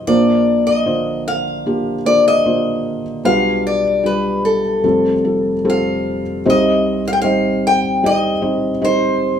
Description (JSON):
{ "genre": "acoustic folk-pop ballad", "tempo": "76 BPM", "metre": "4/4", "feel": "straight", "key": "unclear", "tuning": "A4 = 443 Hz", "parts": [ { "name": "picked old ladder-braced acoustic guitar", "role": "melody", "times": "0.0-9.4 s", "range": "A4 to G5", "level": "-17 LUFS", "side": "left 2 dB", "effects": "none" }, { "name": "felt-muted upright piano", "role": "accompaniment", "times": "0.0-9.4 s", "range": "F1 to Eb5", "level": "-17 LUFS", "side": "equal", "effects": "none" } ], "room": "moderate large studio reverb, RT60 0.8 s", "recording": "minimal, uncompressed stereo recording", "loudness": "-14 LUFS", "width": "side -8 dB against mid", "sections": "0.0-6.4 A section; 6.4-9.4 A section", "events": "none", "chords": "0.1 Bbadd9; 3.2 G7/B; 4.8 Fadd9; 6.4 Cm" }